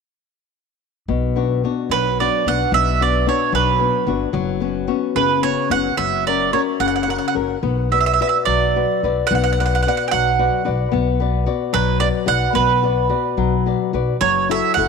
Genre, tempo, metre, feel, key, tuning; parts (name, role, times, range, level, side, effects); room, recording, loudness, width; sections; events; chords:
italian folk, Italian serenade; 73 BPM (dotted quarters); 6/8; rubato; B minor; A4 = 440 Hz
flamenco guitar; accompaniment; 1.1-14.9 s; B2 to D5; -21 LUFS; left 12 dB
upright bass; bass; 1.1-14.9 s; F#1 to B1; -22 LUFS; equal
mandolin; melody; 1.9-14.9 s; B4 to G5; -19 LUFS; right 9 dB
moderate plate reverb, RT60 3.0 s; 1960s-style stereo with parts hard left and right; -16 LUFS; side -5 dB against mid
1.1-14.2 A section
1.1 Bm; 4.3 F#sus4; 6.0 F#; 7.6 Bm; 14.2 F#m7